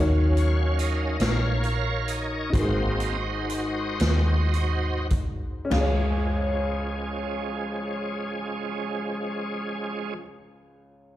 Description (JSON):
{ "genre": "slow gospel", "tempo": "32-49 BPM (dotted quarters)", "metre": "6/8", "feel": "straight", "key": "Db major", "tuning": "A4 = 440 Hz", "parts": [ { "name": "warm upright piano", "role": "accompaniment", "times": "0.0-11.2 s", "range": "Db2 to Db5", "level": "-31 LUFS", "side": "left 2 dB", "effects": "slapback echo" }, { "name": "bright tonewheel organ", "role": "sustained chords", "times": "0.0-10.1 s", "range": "F3 to F5", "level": "-29 LUFS", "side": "right 2 dB", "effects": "slow rotary speaker, overdrive, chorus vibrato" }, { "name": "vintage muted fingered electric bass", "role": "bass", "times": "0.0-10.1 s", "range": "Ab1 to Eb2", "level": "-25 LUFS", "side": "equal", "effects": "none" }, { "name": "swinging big-band drum kit", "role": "drums", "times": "0.4-6.0 s", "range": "crash cymbal, hi-hat, kick drum, snare drum, toms", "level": "-29 LUFS", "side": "equal", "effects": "none" } ], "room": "studio ambience", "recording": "live gig heard through the venue's PA, club reverb", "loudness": "-24 LUFS", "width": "side -13 dB against mid", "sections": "0.0-5.7 A section; 5.7-9.5 B section", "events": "slowing down 0.0-5.7; tonewheel organ solo 0.0-5.7", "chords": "0.0 Ebm7; 2.5 Ab7; 5.7 Db", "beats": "1.21 | 2.54 4.01 | 5.72 7.59" }